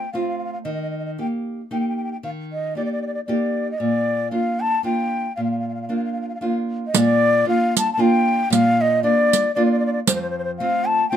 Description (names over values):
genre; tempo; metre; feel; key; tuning
italian folk, Italian serenade; 115 BPM; 3/4; swing 55% on 8ths; Bb major; A4 = 440 Hz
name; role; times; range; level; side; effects
breathy mellow bansuri; melody; 0.0-11.2 s; C5 to A5; -21 LUFS; left 2 dB; none
nylon-string guitar; accompaniment; 0.0-11.2 s; F2 to G4; -22 LUFS; right 1 dB; none
riq; percussion; 6.9-10.3 s; none; -20 LUFS; right 7 dB; none
room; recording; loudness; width
moderate studio reverb, RT60 0.6 s; close, detailed microphones; -18 LUFS; side -9 dB against mid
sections
0.0-6.9 A section; 6.9-11.2 A section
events
none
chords
0.0 F; 0.6 Eb; 3.8 Bb; 10.1 F